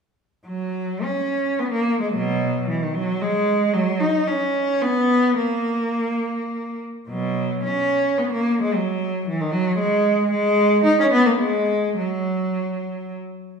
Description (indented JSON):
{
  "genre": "classical, baroque-style suite movement for unaccompanied cello",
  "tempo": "96-116 BPM",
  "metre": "3/4",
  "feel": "rubato",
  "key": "B major, F# major from 10.3 s",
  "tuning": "A4 = 441 Hz",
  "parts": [
    { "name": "warm cello", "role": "solo", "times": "0.5-13.1 s", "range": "B2 to D#4", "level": "-19 LUFS", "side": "equal", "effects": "none" }
  ],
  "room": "wet recital hall reverb, RT60 1.4 s",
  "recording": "recorded in a church or concert hall",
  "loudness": "-19 LUFS",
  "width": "side -5 dB against mid",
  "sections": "0.5-13.6 A section",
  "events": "none",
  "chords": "none"
}